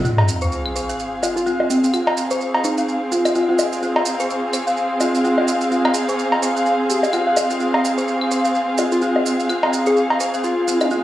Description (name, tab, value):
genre	minimal techno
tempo	127 BPM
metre	4/4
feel	swing 58% on 16ths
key	F minor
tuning	A4 = 440 Hz
part	dark detuned synth bell	riff	0.0-10.9 s	F4 to F5	-23 LUFS	equal	chorus, phaser, low-pass filter, analog delay
part	maracas	percussion	0.0-11.0 s	none	-29 LUFS	right 5 dB	none
part	sub drop	sound effects	0.0-1.9 s	none	-20 LUFS	equal	none
part	muted studio string section	texture	0.0-11.0 s	C4 to F5	-20 LUFS	equal	none
part	cowbell, woodblock and claves	percussion	0.2-10.9 s	none	-22 LUFS	left 1 dB	studio reverb, cassette tape, tape echo
part	soft struck synth lead	melody	1.4-3.0, 8.9-10.9 s	C4 to Ab4	-21 LUFS	equal	chorus, tremolo, cassette tape, tape echo
room	wet lush hall reverb, RT60 2.0 s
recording	home recording on cassette, small room ambience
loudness	-16 LUFS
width	side -13 dB against mid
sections	0.0-11.0 A section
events	impact 0.0-1.9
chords	0.0 Fm